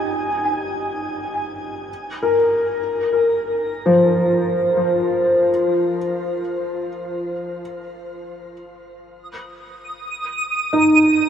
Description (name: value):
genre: ambient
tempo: free time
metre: none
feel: none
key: unclear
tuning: A4 = 440 Hz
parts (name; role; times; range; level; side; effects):
- felt-muted upright piano; arpeggios; 0.0-11.3 s; F3 to Ab5; -18 LUFS; equal; analog chorus, tape echo, shimmer reverb
- twinkling granular texture; texture; 9.9-11.3 s; Eb6; -20 LUFS; right 3 dB; built-in reverb, analog chorus, shimmer reverb
room: wet huge ambient reverb, RT60 7.2 s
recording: dreamy mix soaked in reverb, faint mains hum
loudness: -17 LUFS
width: side -9 dB against mid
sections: 0.0-11.3 A section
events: none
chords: 0.0 N.C.; 1.9 Fsus4; 5.5 N.C.